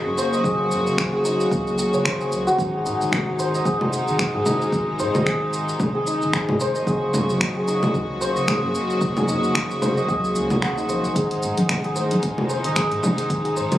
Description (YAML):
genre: organic downtempo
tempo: 112 BPM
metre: 4/4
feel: swing 57% on 16ths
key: unclear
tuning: A4 = 440 Hz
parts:
  - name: rich studio string section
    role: sustained chords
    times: 0.0-13.8 s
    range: B#2 to F#4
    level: -26 LUFS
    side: equal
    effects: sidechain pumping
  - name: santur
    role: arpeggios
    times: 0.0-13.8 s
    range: D#4 to F#5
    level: -23 LUFS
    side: equal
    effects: ping-pong delay
  - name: round analog bass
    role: bass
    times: 0.1-13.8 s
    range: D#1 to G#2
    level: -31 LUFS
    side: equal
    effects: sidechain pumping
  - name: deep house drum kit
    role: drums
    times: 0.2-13.8 s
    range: congas, finger snaps, hi-hat, shaker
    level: -25 LUFS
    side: equal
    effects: none
  - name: electronic kick drum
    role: drums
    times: 0.4-13.4 s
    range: none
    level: -27 LUFS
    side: equal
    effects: none
  - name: congas and bongos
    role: percussion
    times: 11.6-13.8 s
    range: none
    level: -25 LUFS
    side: left 1 dB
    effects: none
room: moderate lush hall reverb, RT60 1.8 s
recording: recorded on a phone in the room, club reverb, compression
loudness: -19 LUFS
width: side -13 dB against mid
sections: 0.0-13.8 A section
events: none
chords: 0.0 F#; 2.6 G#; 6.9 F#; 11.2 G#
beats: | 0.44 0.98 1.51 2.05 | 2.59 3.12 3.66 4.19 | 4.73 5.26 5.80 6.34 | 6.87 7.41 7.94 8.48 | 9.01 9.55 10.09 10.62 | 11.16 11.69 12.23 12.76 | 13.30